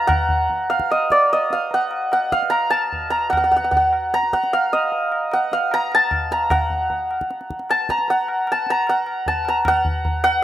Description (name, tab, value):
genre	indian classical, Hindustani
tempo	151 BPM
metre	4/4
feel	straight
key	unclear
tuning	A4 = 440 Hz
part	santur	melody	0.0-10.4 s	D5 to Bb5	-17 LUFS	equal	none
part	tabla	percussion	0.1-10.4 s	none	-27 LUFS	left 1 dB	none
room	light reverb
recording	rough home demo mix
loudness	-17 LUFS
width	side -12 dB against mid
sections	0.0-9.7 A section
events	speeding up 0.0-10.4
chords	none